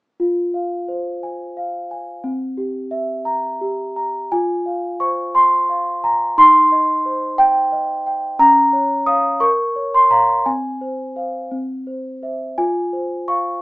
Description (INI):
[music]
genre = classical, lullaby for celesta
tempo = 58 BPM (dotted quarters)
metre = 6/8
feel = rubato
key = F minor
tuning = A4 = 440 Hz
[part]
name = celesta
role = solo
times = 0.2-13.6 s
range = C4 to Eb6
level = -16 LUFS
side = equal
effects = none
[sound]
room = moderate studio ambience, RT60 0.5 s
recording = band playing live in one room, small speaker sound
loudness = -15 LUFS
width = side -23 dB against mid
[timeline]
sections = 0.2-4.3 A section; 4.3-13.6 B section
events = none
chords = 0.2 Fm; 2.2 C7; 4.3 Fm; 6.4 Cm/Eb; 8.4 Bbm/Db; 9.4 Bbm; 10.5 Fm/C; 11.5 C; 12.6 Fm